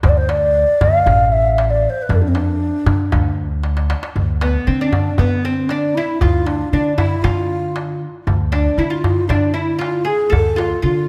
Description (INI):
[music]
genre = Arabic maqam ensemble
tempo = 116 BPM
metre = 4/4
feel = straight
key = D maqam nikriz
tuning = A4 = 440 Hz
[part]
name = mellow hollow alto flute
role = melody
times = 0.0-11.1 s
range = B3 to F5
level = -21 LUFS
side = equal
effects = analog delay
[part]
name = upright bass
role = bass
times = 0.0-11.1 s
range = A1 to D3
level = -22 LUFS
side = equal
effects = none
[part]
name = darbuka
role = percussion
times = 0.0-10.7 s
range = none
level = -22 LUFS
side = equal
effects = none
[part]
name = oud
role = second line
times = 4.4-11.1 s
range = B3 to A4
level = -24 LUFS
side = equal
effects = none
[sound]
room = moderate recital hall reverb, RT60 1.7 s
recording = none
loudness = -17 LUFS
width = mono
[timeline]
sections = 0.0-4.1 A section; 4.1-11.1 B section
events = drum fill 3.6-4.1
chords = none